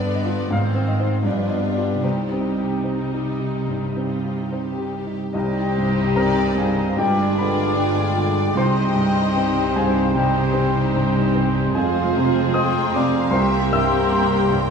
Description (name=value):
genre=classical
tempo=74 BPM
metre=4/4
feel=uneven beats, rubato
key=C minor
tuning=A4 = 444 Hz
part: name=clear concert grand piano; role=melody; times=0.0-14.7 s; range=C2 to E6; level=-21 LUFS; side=equal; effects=none
part: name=rich symphonic violin section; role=second line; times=0.0-14.7 s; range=C4 to G5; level=-32 LUFS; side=left 5 dB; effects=none
part: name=warm studio viola section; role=accompaniment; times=0.0-14.7 s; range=D3 to G4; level=-28 LUFS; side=right 3 dB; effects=none
part: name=rich symphonic cello section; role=bass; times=0.0-14.7 s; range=C2 to C3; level=-27 LUFS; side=right 1 dB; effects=none
part: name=rich symphonic double bass section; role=bass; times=0.5-14.7 s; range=F1 to C2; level=-29 LUFS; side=right 3 dB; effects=none
part: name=warm symphonic violin section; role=melody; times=5.3-14.7 s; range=G4 to Bb4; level=-32 LUFS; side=left 5 dB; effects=none
part: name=clear oboe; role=second line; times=5.3-14.6 s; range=C5 to Eb5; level=-30 LUFS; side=right 2 dB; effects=none
part: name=dark clarinet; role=second line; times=5.3-14.7 s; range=Eb4 to G4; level=-31 LUFS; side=left 5 dB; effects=none
part: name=mellow flute section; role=second line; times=5.3-14.7 s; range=C5 to C6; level=-28 LUFS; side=left 2 dB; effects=none
part: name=warm bassoon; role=accompaniment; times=5.3-14.7 s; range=G3 to Bb3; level=-30 LUFS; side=right 3 dB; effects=none
part: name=dark French horn section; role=sustained chords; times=5.3-14.7 s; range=G3 to G4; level=-28 LUFS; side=left 4 dB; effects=none
room=wet scoring stage reverb, RT60 2.1 s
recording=studio ambience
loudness=-18 LUFS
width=side -6 dB against mid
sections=0.0-5.3 A section; 5.3-14.7 B section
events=none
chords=0.0 G7; 0.5 Ab; 1.2 G7; 2.0 Cm; 7.0 G7b9; 8.6 Cm; 11.8 Fm; 13.3 C7